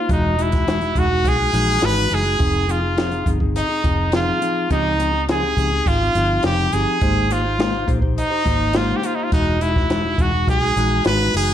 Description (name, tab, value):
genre	indie pop, bedroom pop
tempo	104 BPM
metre	4/4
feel	straight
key	unclear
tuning	A4 = 440 Hz
part	brilliant trumpet	melody	0.0-11.5 s	Eb4 to B4	-20 LUFS	right 1 dB	wide subtle chorus, slapback echo, plate reverb
part	mellow electric guitar	accompaniment	0.0-11.5 s	Db3 to C5	-24 LUFS	left 3 dB	wide subtle chorus, vibrato effect, plate reverb
part	vintage muted fingered electric bass	bass	0.1-11.5 s	E1 to Db2	-22 LUFS	equal	none
part	compact cocktail drum kit	drums	0.1-11.5 s	hi-hat, kick drum, snare drum	-22 LUFS	equal	none
room	moderate studio reverb, RT60 0.6 s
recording	none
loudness	-16 LUFS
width	side -10 dB against mid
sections	0.0-11.5 A section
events	none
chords	0.1 Emaj9; 2.4 Fm7; 4.7 Dbmaj9#11; 7.0 Abmaj9; 9.3 Emaj9